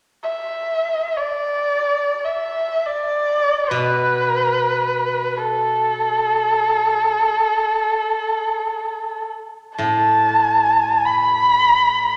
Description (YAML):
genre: chinese traditional, Chinese chamber ensemble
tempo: free time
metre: none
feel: none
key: unclear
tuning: A4 = 439 Hz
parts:
  - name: dark erhu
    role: melody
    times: 0.2-12.2 s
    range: A4 to B5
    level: -19 LUFS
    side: equal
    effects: none
  - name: steel-string zither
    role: accompaniment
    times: 3.7-12.2 s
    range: A2 to B2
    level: -30 LUFS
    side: equal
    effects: none
room: wet recital hall reverb, RT60 1.5 s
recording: none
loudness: -19 LUFS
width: mono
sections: 0.0-12.2 A section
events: none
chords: none